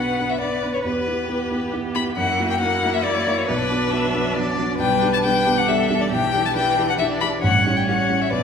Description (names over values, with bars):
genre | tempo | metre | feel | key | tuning
quick classical-period movement for piano quintet | 136 BPM | 3/4 | straight | B minor | A4 = 440 Hz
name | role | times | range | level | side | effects
rich violin | melody | 0.0-8.4 s | B4 to B5 | -22 LUFS | left 5 dB | none
rich cello | second line | 0.0-8.4 s | E3 to B3 | -28 LUFS | right 5 dB | none
rich violin | second line | 0.0-8.4 s | F#4 to E5 | -27 LUFS | left 2 dB | none
warm grand piano | accompaniment | 0.0-8.4 s | A1 to B4 | -24 LUFS | right 1 dB | none
warm viola | accompaniment | 0.0-8.4 s | C#4 to B4 | -30 LUFS | right 2 dB | none
room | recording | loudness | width
wet recital hall reverb, RT60 1.4 s | recorded in a church or concert hall | -18 LUFS | side -6 dB against mid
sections
0.0-8.4 A section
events
none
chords
0.0 Bm; 0.8 Em; 2.2 F#7; 3.5 Bm; 4.8 G/B; 6.1 Em7/B; 7.4 A7